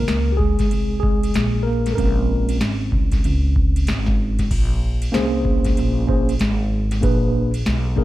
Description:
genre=hip hop, jazz-hop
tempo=95 BPM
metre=4/4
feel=swing 62% on 16ths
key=Bb minor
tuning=A4 = 441 Hz
part: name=mellow tine electric piano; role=accompaniment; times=0.0-8.0 s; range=Db3 to C5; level=-23 LUFS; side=equal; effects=medium stereo tremolo
part: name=upright bass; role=bass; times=0.0-8.0 s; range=Ab1 to Db2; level=-21 LUFS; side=equal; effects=none
part: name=booming analog drum machine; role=drums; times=0.1-8.0 s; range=crash cymbal, hi-hat, kick drum, ride cymbal, snare drum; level=-21 LUFS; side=equal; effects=overdrive
room=little or no reverb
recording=dark, warm production, vinyl crackle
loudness=-17 LUFS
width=side -16 dB against mid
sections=0.0-4.5 A section; 4.5-8.0 A section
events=tine electric piano solo 0.0-4.5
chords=0.0 Bbm9; 7.0 Bb7b9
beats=0.08 0.72 1.35 | 1.98 2.61 3.24 3.87 | 4.50 5.14 5.77 6.40 | 7.03 7.66

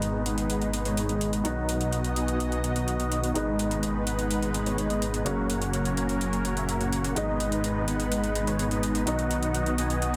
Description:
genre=EDM, festival progressive house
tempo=126 BPM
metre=4/4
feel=straight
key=G# minor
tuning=A4 = 439 Hz
part: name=warm baby grand piano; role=accompaniment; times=0.0-10.2 s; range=C#3 to D#4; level=-35 LUFS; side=equal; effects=dub echo
part: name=lush unison pad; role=sustained chords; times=0.1-10.2 s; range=F#3 to D#5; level=-37 LUFS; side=equal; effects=chorus, phaser
part: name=dense compressed supersaw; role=riff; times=0.0-10.2 s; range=G#3 to G#5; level=-32 LUFS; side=equal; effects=low-pass filter, dub echo
part: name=detuned saw bass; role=bass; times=0.0-10.2 s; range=F#1 to B1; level=-34 LUFS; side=equal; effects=none
part: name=electronic hi-hat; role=drums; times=0.0-10.2 s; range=none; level=-37 LUFS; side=equal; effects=overdrive
part: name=reverse cymbal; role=sound effects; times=10.1-10.2 s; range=none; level=-52 LUFS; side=equal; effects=none
room=moderate lush hall reverb, RT60 2.2 s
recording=dense, heavily limited modern master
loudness=-27 LUFS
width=mono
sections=0.0-10.2 A section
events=none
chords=0.0 G#m; 1.4 B; 3.4 G#m; 5.3 F#; 7.2 G#m; 9.1 B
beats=0.02 0.50 0.97 | 1.45 1.93 2.40 2.88 | 3.35 3.83 4.31 4.78 | 5.26 5.74 6.21 6.69 | 7.16 7.64 8.12 8.59 | 9.07 9.54 10.02

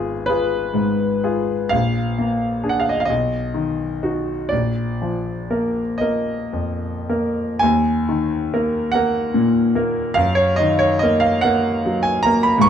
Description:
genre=classical, romantic nocturne for solo piano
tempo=34-50 BPM (dotted quarters)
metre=12/8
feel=rubato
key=Eb minor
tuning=A4 = 438 Hz
part: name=clear grand piano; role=solo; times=0.0-12.7 s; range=Ab1 to Db6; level=-17 LUFS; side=equal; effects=none
room=moderate large studio reverb, RT60 0.8 s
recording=dark, warm production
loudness=-17 LUFS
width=side -8 dB against mid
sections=0.0-7.6 A section; 7.6-12.7 A section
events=none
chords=0.0 Fdim/Ab; 1.7 Bb7; 3.1 B; 4.5 Bb; 7.6 Ebm; 10.2 Ebm/Gb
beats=0.29 | 1.73 3.08 4.51 6.01 | 7.63 8.95 10.19 11.44 | 12.65

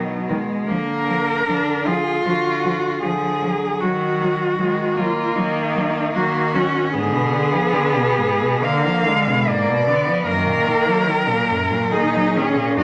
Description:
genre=classical, lyrical piece for cello ensemble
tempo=63-80 BPM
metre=4/4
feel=rubato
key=Eb minor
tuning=A4 = 440 Hz
part: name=warm cello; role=melody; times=0.0-12.8 s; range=Eb4 to F5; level=-23 LUFS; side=equal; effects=none
part: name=rich cello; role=second line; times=0.0-12.8 s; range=F3 to F4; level=-25 LUFS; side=equal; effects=none
part: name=warm cello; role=bass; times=0.0-12.6 s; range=Bb2 to Eb3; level=-29 LUFS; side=equal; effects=none
part: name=warm cello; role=accompaniment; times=0.3-12.8 s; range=Gb2 to Gb3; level=-26 LUFS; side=equal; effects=none
room=wet large studio reverb, RT60 0.8 s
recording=nothing above 10.3 kHz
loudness=-19 LUFS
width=mono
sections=0.0-12.8 A section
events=none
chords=0.0 B; 0.7 Bb/D; 3.8 Ebm; 6.9 Ddim7/Ab; 10.3 Ebm/Gb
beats=| 0.69 1.47 2.25 3.03 | 3.82 4.59 5.35 6.14 | 6.93 7.73 8.64 9.47 | 10.28 11.09 11.93 12.77

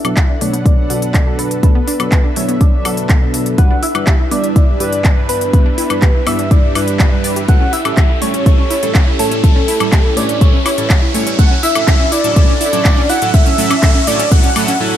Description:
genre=progressive house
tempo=123 BPM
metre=4/4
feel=straight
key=B minor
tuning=A4 = 440 Hz
part: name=wide unison lead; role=melody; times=0.0-14.8 s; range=A4 to F#5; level=-20 LUFS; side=equal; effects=ping-pong delay
part: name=soft synth bell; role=second line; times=0.0-14.8 s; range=A5 to F#6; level=-28 LUFS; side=right 1 dB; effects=chorus, sidechain pumping, low-pass filter, ping-pong delay
part: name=supersaw pad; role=sustained chords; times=0.0-14.8 s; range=C#4 to F#5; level=-26 LUFS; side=equal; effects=sidechain pumping
part: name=chorused polysynth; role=stabs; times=0.0-15.0 s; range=G2 to E5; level=-20 LUFS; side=right 2 dB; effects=vintage 12-bit sampler grit, sidechain pumping, ping-pong delay
part: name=big-room dance drum kit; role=drums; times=0.0-14.8 s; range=handclaps, hi-hat, woodblock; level=-20 LUFS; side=left 1 dB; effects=overdrive, high-pass filter on hats, high-pass filter on snare, high-pass filter on perc
part: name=riser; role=sound effects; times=1.8-15.0 s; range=none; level=-24 LUFS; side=equal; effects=none
part: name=wide unison pluck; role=arpeggios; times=0.2-14.7 s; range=A3 to D5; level=-22 LUFS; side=equal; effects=sidechain pumping, ping-pong delay
part: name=electronic kick drum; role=drums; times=0.2-14.4 s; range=none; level=-11 LUFS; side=equal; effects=none
room=light reverb, digital ambience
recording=none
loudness=-10 LUFS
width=side -11 dB against mid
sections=0.0-15.0 A section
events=build-up 0.0-15.0; filter sweep on synth pluck 0.0-15.0; filter sweep on analog polysynth 0.0-15.0; filter sweep on analog synth lead 0.0-15.0; filter sweep on synth bell 0.0-15.0; riser 1.8-15.0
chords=0.0 Bm7; 3.6 G6; 7.5 A7; 11.4 Dmaj7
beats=0.17 0.66 1.15 | 1.63 2.12 2.61 3.10 | 3.58 4.07 4.56 5.05 | 5.54 6.02 6.51 7.00 | 7.49 7.97 8.46 8.95 | 9.44 9.93 10.41 10.90 | 11.39 11.88 12.36 12.85 | 13.34 13.83 14.31 14.80

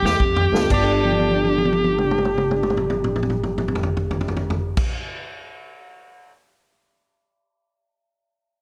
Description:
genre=electric blues shuffle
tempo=115 BPM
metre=4/4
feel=swing 66% on 8ths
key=unclear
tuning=A4 = 442 Hz
part: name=dark smooth lead guitar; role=melody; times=0.0-4.8 s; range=G4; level=-24 LUFS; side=equal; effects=overdrive
part: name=upright bass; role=bass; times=0.0-4.8 s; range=G1 to F2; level=-30 LUFS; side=equal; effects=none
part: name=vintage drum kit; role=drums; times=0.1-6.3 s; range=crash cymbal, kick drum, snare drum, toms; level=-25 LUFS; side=equal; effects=none
part: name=overdriven reed electric piano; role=accompaniment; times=0.5-4.9 s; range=G2 to A4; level=-31 LUFS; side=equal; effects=none
part: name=electric guitar through a small old amp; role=second line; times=0.7-4.8 s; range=D4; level=-30 LUFS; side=equal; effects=ensemble chorus
room=light reverb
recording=none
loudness=-21 LUFS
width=mono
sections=0.7-4.9 A section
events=drum fill 0.0-0.7, 1.0-4.7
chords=0.0 G7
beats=0.20 | 0.70 1.22 1.74 2.26 | 2.78 3.30 3.82 4.34

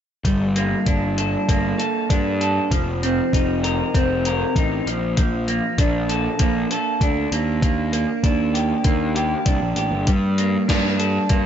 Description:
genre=indie rock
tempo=98 BPM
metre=4/4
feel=straight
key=G minor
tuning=A4 = 436 Hz
part: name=electric guitar through a small old amp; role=riff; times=0.2-11.5 s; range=F3 to Bb4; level=-21 LUFS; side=right 1 dB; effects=wide subtle chorus, slapback echo
part: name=fuzz picked electric bass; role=bass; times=0.2-11.5 s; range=F1 to G2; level=-24 LUFS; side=equal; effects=overdrive
part: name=gated 80s digital drum machine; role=drums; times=0.2-11.4 s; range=hi-hat, kick drum, snare drum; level=-21 LUFS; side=equal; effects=gated reverb, gated reverb snare, overdrive
room=light reverb, digital ambience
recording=nothing above 7.8 kHz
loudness=-18 LUFS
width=side -9 dB against mid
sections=0.2-11.5 A section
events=none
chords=0.2 Gmadd9; 2.7 F7sus4; 4.9 Bbmaj7; 7.3 Ebmaj7; 10.1 Gmadd9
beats=| 0.25 0.86 1.48 2.09 | 2.71 3.32 3.94 4.55 | 5.16 5.78 6.39 7.01 | 7.62 8.23 8.85 9.46 | 10.07 10.69 11.30

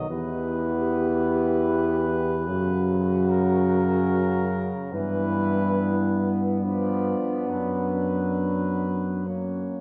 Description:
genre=classical, hymn-like piece for brass band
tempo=66-76 BPM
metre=3/4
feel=rubato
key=unclear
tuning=A4 = 440 Hz
part: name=mellow flugelhorn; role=melody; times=0.0-9.8 s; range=A#4 to D5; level=-37 LUFS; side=equal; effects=none
part: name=mellow French horn section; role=second line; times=0.0-9.8 s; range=C#4 to G4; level=-31 LUFS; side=equal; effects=none
part: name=clear trombone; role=accompaniment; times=0.0-9.8 s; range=C#3 to F#3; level=-34 LUFS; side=equal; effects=none
part: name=clear trombone section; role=accompaniment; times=0.0-9.8 s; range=F#3 to B3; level=-33 LUFS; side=equal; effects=none
part: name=mellow tuba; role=bass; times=0.0-9.8 s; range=E2 to G2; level=-28 LUFS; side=equal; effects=none
room=wet church reverb, RT60 3.1 s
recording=dark, warm production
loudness=-24 LUFS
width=mono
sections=0.0-9.8 A section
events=none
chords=0.1 Em; 2.5 F#; 4.9 Em/G; 6.6 G7; 7.5 Bm/F#; 9.3 F#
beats=| 0.10 0.89 1.69 | 2.48 3.30 4.12 | 4.94 5.77 6.61 | 7.49 8.38 9.26

